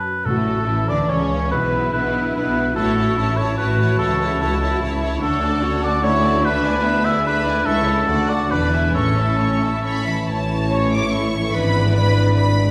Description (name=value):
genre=classical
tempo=145 BPM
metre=3/4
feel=rubato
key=A major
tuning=A4 = 440 Hz
part: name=warm oboe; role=second line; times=0.0-10.0 s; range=A4 to E5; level=-24 LUFS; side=equal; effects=none
part: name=concert harp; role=arpeggios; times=0.0-12.7 s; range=F#2 to D5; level=-30 LUFS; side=equal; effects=none
part: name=rich symphonic violin section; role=melody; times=0.3-12.7 s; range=A4 to D6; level=-31 LUFS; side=equal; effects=none
part: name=clear symphonic violin section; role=second line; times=0.3-12.7 s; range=A3 to F#5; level=-31 LUFS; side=equal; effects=none
part: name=warm studio viola section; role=accompaniment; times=0.3-12.7 s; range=B3 to C#5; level=-28 LUFS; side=equal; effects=none
part: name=rich symphonic double bass section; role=bass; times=0.3-12.7 s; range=E1 to D2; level=-26 LUFS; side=equal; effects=none
part: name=warm symphonic cello section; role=bass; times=0.3-12.7 s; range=C#2 to D3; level=-26 LUFS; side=equal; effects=none
part: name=timpani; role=percussion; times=0.3-0.8 s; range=A2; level=-32 LUFS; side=equal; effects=none
part: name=mellow French horn section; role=sustained chords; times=10.3-12.7 s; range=E3 to D4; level=-26 LUFS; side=equal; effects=none
room=wet recital hall reverb, RT60 1.6 s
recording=recorded in a church or concert hall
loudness=-19 LUFS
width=mono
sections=0.3-10.3 A section; 10.3-12.7 A section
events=none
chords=0.3 A; 1.5 E7/B; 2.8 A; 4.0 A/C#; 5.2 Dmaj7; 6.5 E7/D; 7.7 A/C#; 8.1 D; 8.5 E7; 8.9 A; 11.5 E7/G#